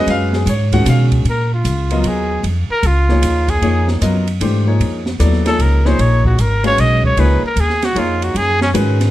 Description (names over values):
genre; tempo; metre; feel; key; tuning
modal jazz; 152 BPM; 3/4; swing 65% on 8ths; Bb phrygian; A4 = 440 Hz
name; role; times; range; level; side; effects
warm baby grand piano; accompaniment; 0.0-9.1 s; Eb3 to Gb5; -19 LUFS; left 2 dB; none
upright bass; bass; 0.0-9.1 s; Ab1 to Cb3; -15 LUFS; equal; none
open jazz drum kit; drums; 0.1-9.1 s; hi-hat, kick drum, ride cymbal, snare drum; -24 LUFS; right 2 dB; none
warm trumpet; melody; 1.3-8.7 s; Db4 to Eb5; -18 LUFS; equal; none
room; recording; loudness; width
light reverb; none; -13 LUFS; side -14 dB against mid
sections
0.0-1.3 A section; 1.3-9.1 A section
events
trumpet solo 1.3-9.1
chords
0.0 Gbsus2; 1.3 Bbm7; 6.0 Gbsus2